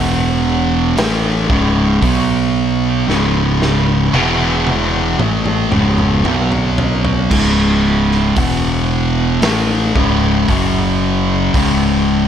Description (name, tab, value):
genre	stoner and doom metal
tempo	57 BPM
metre	4/4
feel	straight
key	C# minor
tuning	A4 = 441 Hz
part	fuzz guitar	riff	0.0-12.3 s	C#2 to B3	-14 LUFS	equal	distortion
part	growling fingered electric bass	bass	0.0-12.3 s	C#1 to B1	-19 LUFS	equal	overdrive, tube saturation
part	raw garage drum kit	drums	1.0-11.8 s	crash cymbal, hi-hat, kick drum, snare drum, toms	-20 LUFS	equal	none
room	little or no reverb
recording	none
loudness	-12 LUFS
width	side -9 dB against mid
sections	0.0-7.3 A section; 7.3-12.3 B section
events	drum fill 3.1-7.3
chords	0.0 E5; 1.0 C#m; 2.0 B5; 3.1 C#5; 4.1 E5; 5.2 C#m; 6.2 B5; 7.3 C#5; 8.4 E5; 9.4 C#m; 10.5 F#5; 11.5 C#5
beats	0.97 2.02 | 3.08 4.14 5.19 6.25 | 7.31 8.37 9.42 10.48 | 11.54